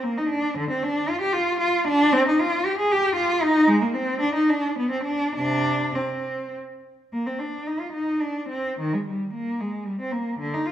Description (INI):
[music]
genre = classical, baroque-style suite movement for unaccompanied cello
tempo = 98-117 BPM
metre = 3/4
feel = rubato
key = C minor, Eb major from 7.1 s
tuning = A4 = 440 Hz
[part]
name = warm cello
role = solo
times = 0.0-10.7 s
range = C3 to Ab4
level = -21 LUFS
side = equal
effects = none
[sound]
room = moderate recital hall reverb, RT60 1.4 s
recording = recorded in a church or concert hall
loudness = -21 LUFS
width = side -11 dB against mid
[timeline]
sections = 0.0-7.1 A section; 7.1-10.7 A section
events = none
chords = none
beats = 0.03 | 0.56 1.08 1.61 | 2.12 2.65 3.17 | 3.69 4.21 4.75 | 5.34 5.94 6.54 | 7.12 7.67 8.20 | 8.77 9.32 9.85 | 10.38